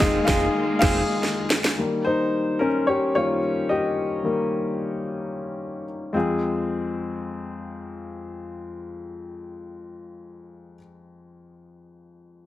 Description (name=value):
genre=piano-driven pop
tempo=110 BPM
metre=4/4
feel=straight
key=F minor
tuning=A4 = 437 Hz
part: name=warm upright piano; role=accompaniment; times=0.0-12.5 s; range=F2 to Ab5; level=-24 LUFS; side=left 2 dB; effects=none
part: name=warm studio string section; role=sustained chords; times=0.0-1.8 s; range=Eb3 to F4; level=-32 LUFS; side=right 2 dB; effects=none
part: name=direct-recorded clean electric guitar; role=riff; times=0.0-1.0 s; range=Eb3 to F4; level=-28 LUFS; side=right 6 dB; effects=none
part: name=deep dub fingered electric bass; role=bass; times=0.0-1.0 s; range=F1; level=-30 LUFS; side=equal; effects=none
part: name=house drum kit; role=drums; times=0.0-1.8 s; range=crash cymbal, kick drum, snare drum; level=-23 LUFS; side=equal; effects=none
room=wet large studio reverb, RT60 1.0 s, digital ambience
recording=heavily compressed radio sound, multiband compression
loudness=-21 LUFS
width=side -14 dB against mid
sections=0.0-1.8 A section; 1.8-6.1 B section; 6.1-10.5 C section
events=band accent 0.0-1.8; upright piano solo 0.0-1.8, 1.8-6.1; drum fill 1.2-1.8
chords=0.0 Fm7; 1.8 Eb; 6.1 Fm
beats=0.15 0.69 1.24 | 1.78 2.33 2.87 3.42 | 3.96 4.51 5.05 5.60 | 6.15 6.69 7.24 7.79 | 8.33 8.88 9.43 9.97